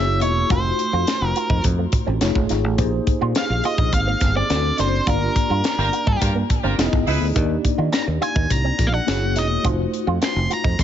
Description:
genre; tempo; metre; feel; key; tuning
polished 1980s jazz-funk pop; 105 BPM; 4/4; straight; unclear; A4 = 442 Hz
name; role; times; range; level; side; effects
octave-fuzz lead guitar; melody; 0.0-10.8 s; Bb4 to C6; -24 LUFS; equal; distortion, ping-pong delay
mellow tine electric piano; accompaniment; 0.0-10.8 s; A3 to D#5; -25 LUFS; left 2 dB; medium stereo tremolo, analog chorus
fingered electric bass; bass; 0.0-10.8 s; Fb1 to Eb3; -22 LUFS; equal; none
electric guitar with an envelope filter; riff; 0.2-10.7 s; A3 to F4; -29 LUFS; right 6 dB; wide subtle chorus
tight funk drum kit; drums; 0.2-10.8 s; hi-hat, kick drum, snare drum; -22 LUFS; equal; none
tambourine; percussion; 1.1-10.3 s; none; -39 LUFS; right 6 dB; none
clear horn section; second line; 5.8-7.3 s; Bb3 to B4; -28 LUFS; right 2 dB; none
room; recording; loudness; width
small room ambience; nothing above 7.8 kHz; -18 LUFS; side -10 dB against mid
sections
0.0-10.8 A section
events
band accent 5.1-7.4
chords
0.0 Gb9; 0.5 F7b9; 2.2 F7alt; 2.8 Bb13sus4; 4.5 D7; 5.1 Gm7; 6.8 Emaj7; 7.4 Ebmaj7; 9.1 Gb9; 9.6 F7b9

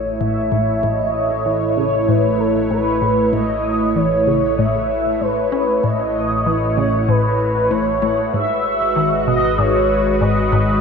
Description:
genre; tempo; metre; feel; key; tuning
ambient, sequencer-driven space music; 96 BPM; 4/4; straight; unclear; A4 = 441 Hz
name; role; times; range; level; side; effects
expressive synth lead; melody; 0.0-10.8 s; A4 to E5; -19 LUFS; equal; ensemble chorus, shimmer reverb, ping-pong delay
phased analog pad; sustained chords; 0.0-10.8 s; G#3 to C#5; -20 LUFS; right 1 dB; phaser, chorus, shimmer reverb
fat analog bass; bass; 0.0-10.8 s; G#1 to A1; -26 LUFS; equal; none
bubbling stepped-filter texture; texture; 0.0-10.8 s; F#4 to F#5; -35 LUFS; left 2 dB; chorus, built-in reverb, shimmer reverb
resonant blip pluck; riff; 0.2-10.8 s; G#2 to C#4; -22 LUFS; left 2 dB; chorus, phaser, ping-pong delay
room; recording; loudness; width
wet spring reverb, RT60 2.4 s; echo-heavy mix, cassette tape; -15 LUFS; side -6 dB against mid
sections
0.0-10.8 A section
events
fade-in on analog synth bass 0.0-10.8; fade-in on synth texture 0.0-10.8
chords
0.0 A; 8.3 G#m7

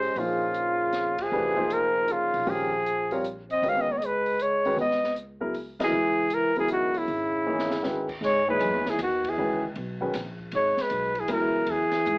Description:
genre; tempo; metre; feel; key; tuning
modal jazz; 156 BPM; 3/4; swing 66% on 8ths; C# dorian from 8.2 s; A4 = 440 Hz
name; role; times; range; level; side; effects
mellow trumpet; melody; 0.0-12.2 s; Fb4 to F5; -24 LUFS; equal; none
warm trombone; second line; 0.0-12.2 s; Db3 to Db4; -31 LUFS; right 1 dB; none
warm upright piano; accompaniment; 0.0-11.9 s; A#2 to Eb5; -30 LUFS; equal; none
upright bass; bass; 0.0-12.2 s; F1 to Ab2; -39 LUFS; equal; none
open jazz drum kit; drums; 0.0-12.2 s; crash cymbal, hi-hat, kick drum, ride cymbal, snare drum; -41 LUFS; equal; none
room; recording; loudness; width
moderate club reverb, RT60 0.5 s; AM radio sound; -24 LUFS; side -27 dB against mid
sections
0.0-8.2 A section; 8.2-12.2 B section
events
band accent 1.1, 5.7, 9.2; drum fill 7.5-7.8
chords
0.0 Bbm9; 3.6 Dbm9

